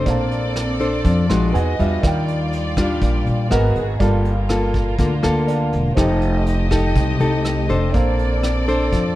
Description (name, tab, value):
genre	bossa nova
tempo	122 BPM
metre	4/4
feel	straight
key	Bb major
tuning	A4 = 441 Hz
part	nylon-string guitar	accompaniment	0.0-9.2 s	Bb2 to C5	-20 LUFS	left 2 dB	none
part	warm concert grand piano	accompaniment	0.0-9.2 s	Bb4 to C6	-28 LUFS	right 4 dB	none
part	warm studio string section	sustained chords	0.0-9.2 s	G3 to D#5	-26 LUFS	right 1 dB	none
part	upright bass	bass	0.0-9.2 s	E1 to F2	-21 LUFS	equal	none
part	vintage brush drum kit	drums	0.1-9.0 s	hi-hat, kick drum, rim click	-24 LUFS	right 1 dB	none
room	light reverb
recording	none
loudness	-16 LUFS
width	side -15 dB against mid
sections	0.0-9.2 A section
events	grand piano fill 1.0-2.0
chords	0.1 Bbmaj9; 1.5 Emaj9; 2.0 Ebmaj9; 3.5 Abm9; 4.0 Gm9; 6.0 F9; 7.9 Bbmaj9